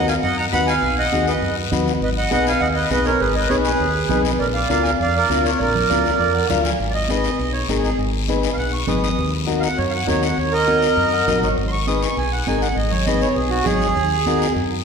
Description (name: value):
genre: latin, cumbia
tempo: 201 BPM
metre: 4/4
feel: straight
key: unclear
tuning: A4 = 436 Hz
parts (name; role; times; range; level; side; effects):
- accordion; melody; 0.0-14.5 s; Gb4 to Eb6; -20 LUFS; right 4 dB; none
- overdriven combo organ; accompaniment; 0.0-14.5 s; D4 to Ab5; -24 LUFS; left 5 dB; none
- fingered electric bass; bass; 0.0-14.8 s; Ab1 to F#2; -24 LUFS; equal; none
- guiro; percussion; 0.1-14.8 s; none; -29 LUFS; left 7 dB; none
- congas; percussion; 0.2-14.7 s; none; -26 LUFS; right 1 dB; none
room: wet scoring stage reverb, RT60 1.7 s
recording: recorded in a church or concert hall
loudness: -17 LUFS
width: side -6 dB against mid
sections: 0.0-6.8 A section; 6.8-14.8 B section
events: drum fill 5.9-6.8; transistor combo organ fill 5.9-6.8, 11.0-11.6; accordion solo 6.8-14.8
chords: 0.0 B; 2.0 Abm; 4.4 Bb; 6.8 Abm; 9.2 Ebm; 11.6 Abm; 14.0 Ebm